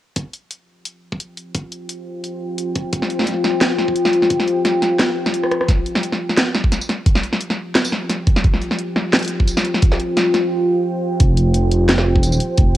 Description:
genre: half-time drum and bass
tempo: 174 BPM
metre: 4/4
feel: swing 55% on 16ths, half-time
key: unclear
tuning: A4 = 441 Hz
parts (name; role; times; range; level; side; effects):
- deep dark ambient pad; sustained chords; 2.1-12.8 s; F4 to G5; -20 LUFS; left 1 dB; chorus, built-in reverb, sidechain pumping, cassette tape
- drum and bass drum kit; drums; 0.2-12.7 s; hi-hat, rim click, snare drum, tambourine; -19 LUFS; equal; cassette tape
- electronic kick drum; drums; 0.2-12.7 s; none; -16 LUFS; equal; high-pass filter on kick, cassette tape, high-pass filter on room
- dark detuned saw bass; bass; 11.2-12.8 s; F1; -16 LUFS; equal; none
room: moderate lush hall reverb, RT60 1.7 s, digital ambience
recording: home recording on cassette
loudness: -15 LUFS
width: side -14 dB against mid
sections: 0.2-5.7 A section; 5.7-11.2 B section; 11.2-12.8 C section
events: kick drops out 5.3-5.7; drum fill 5.4; build-up 5.7-11.2; break 10.5-11.2; drop 11.2-12.8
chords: 0.2 Fsus2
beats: | 0.17 0.51 0.86 1.20 | 1.55 1.89 2.24 2.58 | 2.92 3.27 3.62 3.96 | 4.30 4.65 4.99 5.34 | 5.68 6.03 6.37 6.72 | 7.06 7.41 7.75 8.10 | 8.44 8.79 9.13 9.48 | 9.82 10.17 10.51 10.86 | 11.20 11.55 11.89 12.24 | 12.58

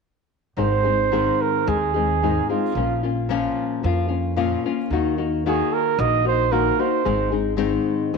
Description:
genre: mexican folk, mariachi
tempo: 111 BPM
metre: 4/4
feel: straight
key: Ab major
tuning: A4 = 439 Hz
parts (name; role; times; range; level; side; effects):
- mellow trumpet; melody; 0.6-7.3 s; F4 to Eb5; -22 LUFS; right 10 dB; none
- nylon-string guitar; accompaniment; 0.6-8.2 s; Ab2 to Ab4; -22 LUFS; left 7 dB; none
- upright bass; bass; 0.6-8.2 s; Ab1 to F2; -25 LUFS; right 1 dB; none
room: wet echo chamber reverb, RT60 1.6 s, studio ambience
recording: 1960s-style stereo with parts hard left and right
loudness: -19 LUFS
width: side -4 dB against mid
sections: 0.6-8.2 A section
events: none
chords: 0.6 Ab; 2.8 Bbm; 4.9 Ebm; 7.1 Ab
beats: | 0.58 1.13 1.68 2.22 | 2.76 3.30 3.84 4.38 | 4.91 5.45 5.98 6.52 | 7.06 7.60 8.14

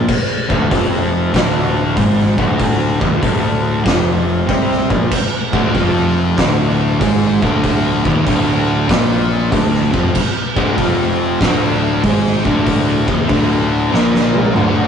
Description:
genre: stoner and doom metal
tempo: 95 BPM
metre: 4/4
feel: swing 66% on 8ths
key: unclear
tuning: A4 = 440 Hz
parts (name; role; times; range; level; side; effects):
- fuzz guitar; riff; 0.0-14.9 s; D2 to C4; -17 LUFS; left 1 dB; distortion
- fuzz picked electric bass; bass; 0.0-14.9 s; D1 to C2; -20 LUFS; equal; overdrive, tube saturation
- oversized low-tuned drum kit; drums; 0.1-14.9 s; crash cymbal, hi-hat, kick drum, snare drum, toms; -17 LUFS; equal; none
- thick fuzz guitar; riff; 5.5-14.9 s; D2 to Bb3; -19 LUFS; right 1 dB; distortion
room: light reverb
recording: rough rehearsal-room recording, nothing above 10.4 kHz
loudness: -13 LUFS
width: side -7 dB against mid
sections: 0.0-14.9 A section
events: drum fill 13.9-14.9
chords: 0.0 Dm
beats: | 0.09 0.72 1.34 1.98 | 2.60 3.23 3.86 4.49 | 5.12 5.75 6.38 7.01 | 7.64 8.27 8.90 9.53 | 10.15 10.78 11.41 12.04 | 12.67 13.30 13.93 14.56

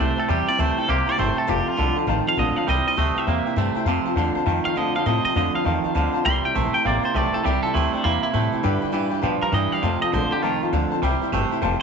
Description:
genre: rockabilly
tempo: 201 BPM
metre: 4/4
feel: swing 63% on 8ths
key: C mixolydian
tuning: A4 = 440 Hz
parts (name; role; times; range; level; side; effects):
- twangy electric guitar; melody; 0.0-10.6 s; D4 to C6; -25 LUFS; right 1 dB; tape echo
- bright upright piano; accompaniment; 0.0-11.7 s; B4 to Bb5; -28 LUFS; left 11 dB; none
- picked steel-string acoustic guitar; accompaniment; 0.0-11.8 s; C3 to C5; -29 LUFS; left 11 dB; none
- twangy electric guitar; riff; 0.0-11.8 s; F2 to Bb3; -24 LUFS; right 10 dB; none
- upright bass; bass; 0.0-11.8 s; F1 to B2; -25 LUFS; left 1 dB; none
room: wet spring reverb, RT60 1.2 s, small room reverb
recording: 1960s-style stereo with parts hard left and right, nothing above 7.9 kHz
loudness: -19 LUFS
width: side -6 dB against mid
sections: 0.0-11.8 A section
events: none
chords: 0.0 C; 1.5 F; 2.7 C; 3.9 F; 6.3 C; 8.6 G; 9.8 F; 11.0 C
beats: | 0.29 0.59 0.89 1.19 | 1.48 1.78 2.08 2.38 | 2.67 2.97 3.27 3.57 | 3.87 4.17 4.46 4.76 | 5.06 5.36 5.66 5.95 | 6.25 6.55 6.85 7.15 | 7.44 7.74 8.04 8.34 | 8.64 8.94 9.23 9.53 | 9.83 10.13 10.43 10.73 | 11.03 11.32 11.62

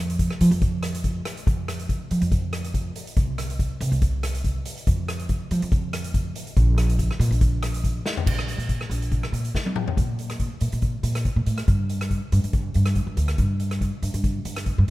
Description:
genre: calypso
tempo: 141 BPM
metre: 4/4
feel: swing 54% on 16ths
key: unclear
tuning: A4 = 440 Hz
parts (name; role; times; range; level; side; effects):
- upright bass; bass; 0.0-14.9 s; Bb1 to F3; -23 LUFS; equal; none
- street-band drum kit; drums; 0.1-14.9 s; crash cymbal, hi-hat, kick drum, rim click, snare drum, toms; -25 LUFS; left 1 dB; none
room: little or no reverb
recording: minimal, uncompressed stereo recording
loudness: -22 LUFS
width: side -18 dB against mid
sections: 0.0-8.3 A section; 8.3-10.0 B section; 10.0-14.9 C section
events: drum fill 8.1, 9.5-10.0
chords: none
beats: 0.19 0.62 1.04 | 1.47 1.89 2.32 2.74 | 3.17 3.59 4.02 4.44 | 4.87 5.29 5.71 6.14 | 6.56 6.99 7.41 7.84 | 8.27 8.69 9.12 9.54 | 9.97 10.40 10.82 11.25 | 11.68 12.10 12.53 12.96 | 13.38 13.81 14.23 14.66

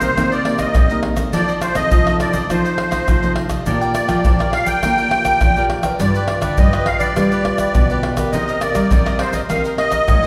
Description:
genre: samba and choro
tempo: 103 BPM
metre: 4/4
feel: straight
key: unclear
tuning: A4 = 440 Hz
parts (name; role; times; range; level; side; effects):
- musette accordion; melody; 0.0-10.3 s; C5 to G5; -22 LUFS; equal; none
- cavaquinho; accompaniment; 0.0-10.3 s; D4 to G5; -30 LUFS; equal; none
- nylon-string guitar; accompaniment; 0.0-10.3 s; C3 to Eb5; -27 LUFS; equal; none
- nylon-string guitar; bass; 0.0-10.3 s; G2 to C4; -25 LUFS; equal; none
- tube shaker, surdo, pandeiro and tamborim; percussion; 0.0-10.3 s; none; -21 LUFS; equal; none
room: wet recital hall reverb, RT60 1.4 s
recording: recorded in a church or concert hall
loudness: -17 LUFS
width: mono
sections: 0.0-10.3 A section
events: none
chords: 0.0 Cm7; 1.3 F7; 3.7 Bb6; 6.0 G7; 8.3 Cm7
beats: 0.17 0.75 | 1.33 1.92 2.50 3.08 | 3.66 4.25 4.83 5.41 | 5.99 6.58 7.16 7.74 | 8.33 8.91 9.49 10.08

